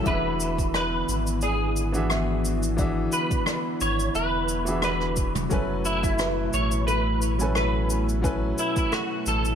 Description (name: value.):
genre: sunset chillout.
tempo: 88 BPM.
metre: 4/4.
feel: swing 54% on 16ths.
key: unclear.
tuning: A4 = 440 Hz.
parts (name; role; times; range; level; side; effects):
semi-hollow electric guitar; melody; 0.0-9.6 s; E4 to C#5; -28 LUFS; equal; ensemble chorus, digital delay.
warm grand piano; accompaniment; 0.0-9.6 s; E3 to G#5; -30 LUFS; moving between left 4 dB and right 4 dB; auto-pan, digital delay.
airy breathy pad; sustained chords; 0.0-9.6 s; B2 to E4; -31 LUFS; equal; chorus.
kalimba; arpeggios; 0.1-9.2 s; A4 to E5; -37 LUFS; right 1 dB; digital delay.
warm sub bass; bass; 0.1-9.5 s; E1 to A1; -28 LUFS; equal; tube saturation.
electronic kick drum; drums; 0.1-8.9 s; none; -27 LUFS; equal; none.
jazz brush drum kit; drums; 0.1-9.6 s; cabasa, rim click, toms; -31 LUFS; left 1 dB; none.
room: moderate plate reverb, RT60 3.2 s.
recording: bright 1980s-style digital production.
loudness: -22 LUFS.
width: side -8 dB against mid.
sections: 0.0-9.6 A section.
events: none.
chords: 0.1 E7; 5.5 F#m11.